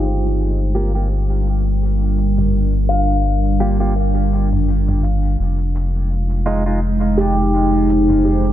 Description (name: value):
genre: ambient dub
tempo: 84 BPM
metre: 4/4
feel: swing 57% on 16ths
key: unclear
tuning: A4 = 441 Hz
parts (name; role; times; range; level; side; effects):
- deep dark ambient pad; sustained chords; 0.0-8.5 s; G3 to F5; -20 LUFS; right 1 dB; chorus, built-in reverb
- handpan; arpeggios; 0.0-8.5 s; G4 to F5; -25 LUFS; left 1 dB; low-pass filter, analog delay
- soft dub sub bass; bass; 0.0-8.5 s; F1 to G1; -17 LUFS; equal; tube saturation
- electronic shaker and toms; drums; 0.0-8.2 s; none; -28 LUFS; equal; none
- semi-hollow electric guitar; stabs; 0.7-6.8 s; Ab3 to G4; -28 LUFS; right 2 dB; dub echo
room: moderate church reverb, RT60 2.7 s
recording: dreamy mix soaked in reverb, low-pass filter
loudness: -15 LUFS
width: side -12 dB against mid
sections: 0.0-8.5 A section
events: filter sweep on handpan 0.0-8.5; filter sweep 0.0-8.5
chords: 0.0 Gm7; 5.4 Fm7